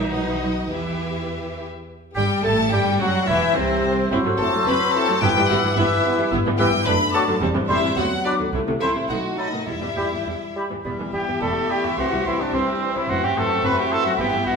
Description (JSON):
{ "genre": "quick classical-period movement for symphony orchestra", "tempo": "107 BPM", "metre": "2/4", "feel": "straight", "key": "E minor", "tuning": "A4 = 445 Hz", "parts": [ { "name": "rich chamber violin section", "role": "melody", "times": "0.0-14.6 s", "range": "C5 to B5", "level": "-27 LUFS", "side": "left 4 dB", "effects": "none" }, { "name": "rich chamber violin section", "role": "second line", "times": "0.0-14.6 s", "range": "C4 to B4", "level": "-29 LUFS", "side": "left 3 dB", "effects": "none" }, { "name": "rich studio viola section", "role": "accompaniment", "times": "0.0-14.5 s", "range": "C3 to E4", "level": "-27 LUFS", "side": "right 2 dB", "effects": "none" }, { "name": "dark chamber double bass section", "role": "bass", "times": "0.0-14.5 s", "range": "E1 to E2", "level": "-30 LUFS", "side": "right 3 dB", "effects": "none" }, { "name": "rich symphonic cello section", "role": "bass", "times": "0.0-14.5 s", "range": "C2 to F#3", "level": "-29 LUFS", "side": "right 2 dB", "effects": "none" }, { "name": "clear clarinet", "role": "second line", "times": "2.2-14.6 s", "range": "G3 to A4", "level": "-31 LUFS", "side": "left 1 dB", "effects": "none" }, { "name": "clear oboe", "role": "second line", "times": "2.2-14.6 s", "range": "C4 to C6", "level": "-30 LUFS", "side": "right 2 dB", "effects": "none" }, { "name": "flute section", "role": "second line", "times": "2.2-14.6 s", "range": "C5 to E6", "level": "-29 LUFS", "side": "left 1 dB", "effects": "none" }, { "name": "warm bassoon", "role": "accompaniment", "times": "2.2-14.6 s", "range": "C3 to A3", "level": "-28 LUFS", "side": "right 1 dB", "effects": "none" }, { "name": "dark French horn section", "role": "sustained chords", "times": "2.2-14.6 s", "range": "C3 to E4", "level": "-28 LUFS", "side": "left 4 dB", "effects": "none" }, { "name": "clear trumpet", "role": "stabs", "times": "11.1-14.6 s", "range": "C4 to B4", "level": "-23 LUFS", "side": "right 1 dB", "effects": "none" } ], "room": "wet recital hall reverb, RT60 1.4 s", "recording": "recorded in a church or concert hall", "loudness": "-19 LUFS", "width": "side -5 dB against mid", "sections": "0.0-1.9 A section; 1.9-10.9 B section; 10.9-14.6 B section", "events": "none", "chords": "0.1 B; 0.7 Em; 1.9 Gsus2; 3.0 C; 4.1 F#m7b5; 5.2 Em/G; 6.9 D; 7.4 C/E; 8.0 Bm; 8.5 Am/C; 9.1 B7; 9.7 Em; 12.0 C; 13.1 F#m7b5" }